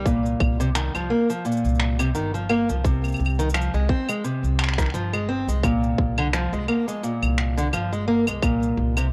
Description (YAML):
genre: folktronica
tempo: 86 BPM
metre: 4/4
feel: swing 56% on 16ths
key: unclear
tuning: A4 = 440 Hz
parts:
  - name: picked acoustic archtop guitar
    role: arpeggios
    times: 0.0-9.1 s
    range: Bb2 to C4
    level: -26 LUFS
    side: equal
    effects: vintage 12-bit sampler grit, cassette tape, tape echo
  - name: upright bass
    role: bass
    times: 0.0-9.1 s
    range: G1 to C2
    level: -27 LUFS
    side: equal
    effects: tube saturation
  - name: electronic kick drum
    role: drums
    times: 0.1-8.6 s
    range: none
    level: -24 LUFS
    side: equal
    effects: overdrive, cassette tape
  - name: electronic shaker, claves and finger snaps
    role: drums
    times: 0.1-9.1 s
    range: none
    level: -31 LUFS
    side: equal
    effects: overdrive, cassette tape
room: light reverb, digital ambience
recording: home recording on cassette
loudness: -23 LUFS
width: mono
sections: 0.0-9.1 A section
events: none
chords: 0.1 F7sus4/C; 2.8 Ab6/C; 5.6 Bb7(no3)/C; 8.4 C7(no3)